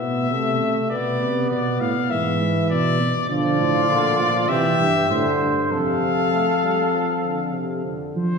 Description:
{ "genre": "classical, imitative canzona for brass ensemble", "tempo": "99 BPM", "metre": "4/4", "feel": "straight", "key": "F major from 3.3 s", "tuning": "A4 = 440 Hz", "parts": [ { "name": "bright trumpet", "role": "melody", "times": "0.0-8.4 s", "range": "C5 to F5", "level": "-24 LUFS", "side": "left 6 dB", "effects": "none" }, { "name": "warm trombone", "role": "accompaniment", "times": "0.0-8.2 s", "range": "C3 to B3", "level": "-24 LUFS", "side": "right 2 dB", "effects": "none" }, { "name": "mellow tuba", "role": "bass", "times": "0.0-8.4 s", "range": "F2 to F3", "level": "-24 LUFS", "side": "right 1 dB", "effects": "none" }, { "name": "warm flugelhorn", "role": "second line", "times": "3.3-7.9 s", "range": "F4 to C5", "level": "-24 LUFS", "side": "right 3 dB", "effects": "none" } ], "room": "wet scoring stage reverb, RT60 1.6 s", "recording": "heard from further back in the room, studio reverb", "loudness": "-18 LUFS", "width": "side -5 dB against mid", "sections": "0.0-8.2 A section", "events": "none", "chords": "0.0 Am; 0.9 Bdim; 2.1 E/G#; 3.3 Bb; 4.5 C; 5.7 F" }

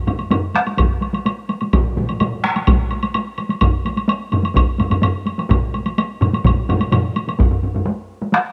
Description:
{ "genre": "japanese traditional, taiko drum ensemble", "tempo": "127 BPM", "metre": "4/4", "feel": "straight", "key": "none", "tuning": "none", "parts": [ { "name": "taiko ensemble", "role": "percussion", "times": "0.1-8.4 s", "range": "none", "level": "-24 LUFS", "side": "equal", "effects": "none" }, { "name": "taiko ensemble", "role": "percussion", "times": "0.1-8.4 s", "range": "none", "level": "-22 LUFS", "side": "equal", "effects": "none" }, { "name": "woodblock", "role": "percussion", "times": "0.1-7.4 s", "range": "none", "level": "-27 LUFS", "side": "equal", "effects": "none" }, { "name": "solo taiko drums", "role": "percussion", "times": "0.8-7.5 s", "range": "none", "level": "-20 LUFS", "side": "equal", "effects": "none" }, { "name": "taiko ensemble", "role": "percussion", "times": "1.7-7.0 s", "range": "none", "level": "-24 LUFS", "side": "equal", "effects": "none" } ], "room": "little or no reverb", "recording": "none", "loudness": "-19 LUFS", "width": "mono", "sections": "0.0-7.4 A section; 7.4-8.5 B section", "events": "none", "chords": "none" }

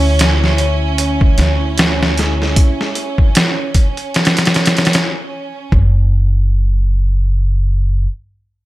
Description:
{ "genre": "trip hop", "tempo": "76 BPM", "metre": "4/4", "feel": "swing 57% on 16ths", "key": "unclear", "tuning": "A4 = 440 Hz", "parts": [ { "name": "clear studio violin section", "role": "sustained chords", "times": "0.0-5.7 s", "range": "C#4", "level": "-21 LUFS", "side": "right 2 dB", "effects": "none" }, { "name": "upright bass", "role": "bass", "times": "0.0-8.1 s", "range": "F#1 to D2", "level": "-14 LUFS", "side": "equal", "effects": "none" }, { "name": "bowed-like drone", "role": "texture", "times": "0.0-2.6 s", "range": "E4", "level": "-29 LUFS", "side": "right 1 dB", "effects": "built-in reverb" }, { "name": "trip hop sampler-style drum kit", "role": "drums", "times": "0.2-5.9 s", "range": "hi-hat, kick drum, snare drum", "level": "-13 LUFS", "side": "equal", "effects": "none" } ], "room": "little or no reverb", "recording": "none", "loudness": "-12 LUFS", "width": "side -17 dB against mid", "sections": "0.0-5.7 A section; 5.7-8.7 B section", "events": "none", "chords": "0.0 Dsus2; 2.6 N.C." }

